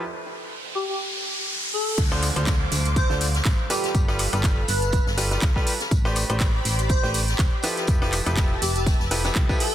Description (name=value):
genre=piano house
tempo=122 BPM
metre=4/4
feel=swing 56% on 16ths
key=unclear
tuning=A4 = 436 Hz
part: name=riser and downlifter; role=sound effects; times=0.0-5.9 s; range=none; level=-31 LUFS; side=right 1 dB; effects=none
part: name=airy dreamy lead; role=melody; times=0.8-9.7 s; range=G4 to C5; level=-31 LUFS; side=equal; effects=chorus, dub echo
part: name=analog string pad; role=sustained chords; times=2.0-9.7 s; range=G4 to D6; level=-33 LUFS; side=left 1 dB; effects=ensemble chorus, sidechain pumping
part: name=solid FM bass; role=bass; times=2.0-9.5 s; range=D1 to D2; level=-26 LUFS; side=equal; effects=sidechain pumping
part: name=electronic kick drum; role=drums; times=2.0-9.6 s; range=none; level=-22 LUFS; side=equal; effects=none
part: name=house drum kit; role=drums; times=2.0-9.7 s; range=crash cymbal, handclaps, hi-hat, tambourine, woodblock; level=-28 LUFS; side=equal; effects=low-pass filter on perc, low-pass filter on hats, low-pass filter on cymbals, low-pass filter on snare, low-pass filter on room
part: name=tambourine and snare drum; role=drums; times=2.0-9.7 s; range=none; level=-34 LUFS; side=left 1 dB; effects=high-pass filter on snare, high-pass filter on perc, high-pass filter on room
part: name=bright grand piano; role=riff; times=2.1-9.6 s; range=D3 to C5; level=-29 LUFS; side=equal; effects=sidechain pumping, dub echo
room=digital ambience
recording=dense, heavily limited modern master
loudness=-20 LUFS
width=side -11 dB against mid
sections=0.0-2.0 A section; 2.0-9.7 B section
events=riser 0.0-2.0; break 0.0-2.0; drop 2.0-9.7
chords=0.0 N.C.; 2.0 Dm7; 3.7 G9; 5.9 Am11; 7.9 Fmaj9#11